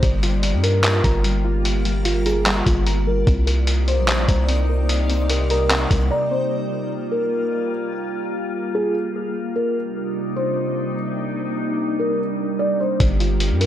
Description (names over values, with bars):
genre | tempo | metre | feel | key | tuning
hip hop, atmospheric cloud-rap | 148 BPM | 4/4 | half-time | C minor | A4 = 441 Hz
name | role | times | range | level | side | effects
glassy FM pad | sustained chords | 0.0-13.7 s | C3 to D5 | -24 LUFS | equal | ensemble chorus, built-in reverb, sidechain pumping
soft round pluck | arpeggios | 0.0-6.5, 13.0-13.7 s | G3 to Bb5 | -30 LUFS | left 1 dB | chorus, tape echo
long sustained 808-style bass | bass | 0.0-6.1, 13.0-13.7 s | G1 to G2 | -20 LUFS | equal | none
lo-fi sampler-style drum kit | drums | 0.0-6.0, 13.0-13.7 s | handclaps, hi-hat, kick drum | -21 LUFS | equal | none
backwards swelling texture | texture | 0.0-6.5, 13.0-13.7 s | G3 to C5 | -36 LUFS | left 2 dB | built-in reverb
felt-muted upright piano | melody | 0.6-13.7 s | Ab4 to D5 | -25 LUFS | equal | tape echo
room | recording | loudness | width
little or no reverb | dry, gritty hardware recording | -18 LUFS | side -11 dB against mid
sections
0.0-6.5 A section; 6.5-13.7 B section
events
break 6.1-6.5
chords
0.0 Gm7; 3.3 Cm7; 6.5 Gm7; 9.8 Cm7; 13.0 Gm7